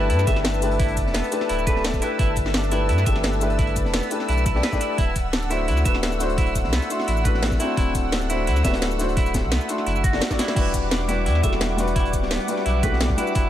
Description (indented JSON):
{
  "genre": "liquid drum and bass",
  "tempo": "172 BPM",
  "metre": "4/4",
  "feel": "straight",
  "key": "E minor",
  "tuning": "A4 = 440 Hz",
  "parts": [
    { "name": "felt-muted upright piano", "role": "accompaniment", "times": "0.0-13.5 s", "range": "G3 to C6", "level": "-26 LUFS", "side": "left 2 dB", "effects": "tape echo" },
    { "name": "lush unison pad", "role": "sustained chords", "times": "0.0-13.5 s", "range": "G3 to E6", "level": "-30 LUFS", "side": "equal", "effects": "chorus, sidechain pumping" },
    { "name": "clean electric guitar", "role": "arpeggios", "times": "0.0-13.5 s", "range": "B3 to E5", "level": "-29 LUFS", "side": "right 4 dB", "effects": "lush chorus, tape echo" },
    { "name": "warm sub bass", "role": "bass", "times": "0.0-13.5 s", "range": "D1 to G2", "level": "-24 LUFS", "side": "equal", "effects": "none" },
    { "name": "crunchy breakbeat drum kit", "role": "drums", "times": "0.1-13.4 s", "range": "hi-hat, snare drum", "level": "-33 LUFS", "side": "equal", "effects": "high-pass filter on hats, high-pass filter on snare, high-pass filter on room" },
    { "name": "drum and bass drum kit", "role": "drums", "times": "0.1-13.4 s", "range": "crash cymbal, hi-hat, shaker, snare drum", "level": "-28 LUFS", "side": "equal", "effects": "none" },
    { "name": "electronic kick drum", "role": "drums", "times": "0.3-13.4 s", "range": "none", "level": "-23 LUFS", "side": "equal", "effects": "none" }
  ],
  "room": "light reverb, digital ambience",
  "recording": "none",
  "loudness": "-19 LUFS",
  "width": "side -12 dB against mid",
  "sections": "0.0-10.6 A section; 10.6-13.5 A section",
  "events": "drop 0.0-10.6, 10.6-13.5; drum fill 10.3",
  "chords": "0.0 G69; 5.0 D9; 10.6 Em9"
}